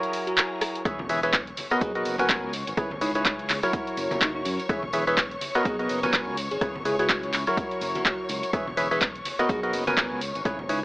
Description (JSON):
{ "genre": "piano house", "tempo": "125 BPM", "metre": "4/4", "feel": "swing 58% on 16ths", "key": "B major", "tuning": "A4 = 440 Hz", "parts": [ { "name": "warm symphonic string section", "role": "sustained chords", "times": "0.0-10.8 s", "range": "G#4 to C#6", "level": "-34 LUFS", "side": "left 1 dB", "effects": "sidechain pumping" }, { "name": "percussive organ stab", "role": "riff", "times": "0.0-10.8 s", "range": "C#3 to G#5", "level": "-27 LUFS", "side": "equal", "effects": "wide subtle chorus, sidechain pumping" }, { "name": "breakbeat sampler-style drum kit", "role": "drums", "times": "0.0-10.8 s", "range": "none", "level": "barely audible", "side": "none", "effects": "none" }, { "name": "punchy analog drum machine", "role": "drums", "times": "0.0-10.8 s", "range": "handclaps, hi-hat, rim click", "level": "-26 LUFS", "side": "equal", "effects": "overdrive, small room ambience" }, { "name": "bell-like FM electric piano", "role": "melody", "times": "0.3-10.8 s", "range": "D#4 to B4", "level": "-34 LUFS", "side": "equal", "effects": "chorus" }, { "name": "modern bright fingered electric bass", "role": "bass", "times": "0.9-10.8 s", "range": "E1 to F#2", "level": "-37 LUFS", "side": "equal", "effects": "tube saturation, sidechain pumping" }, { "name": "electronic kick drum", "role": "drums", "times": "0.9-10.6 s", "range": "none", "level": "-31 LUFS", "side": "equal", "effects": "overdrive, small room ambience" }, { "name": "tambourine and congas", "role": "percussion", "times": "0.9-10.8 s", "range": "none", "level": "-40 LUFS", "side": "equal", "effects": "none" } ], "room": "light reverb", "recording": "dry, gritty hardware recording, AM radio sound", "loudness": "-23 LUFS", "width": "side -21 dB against mid", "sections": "0.0-10.8 A section", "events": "break 0.0-0.9", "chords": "0.0 F#7; 0.9 E6; 1.6 Bmaj7; 2.5 C#m7; 3.7 F#7; 4.7 E6; 5.4 Bmaj7; 6.4 C#m7; 7.6 F#7; 8.5 E6; 9.3 Bmaj7; 10.2 C#m7" }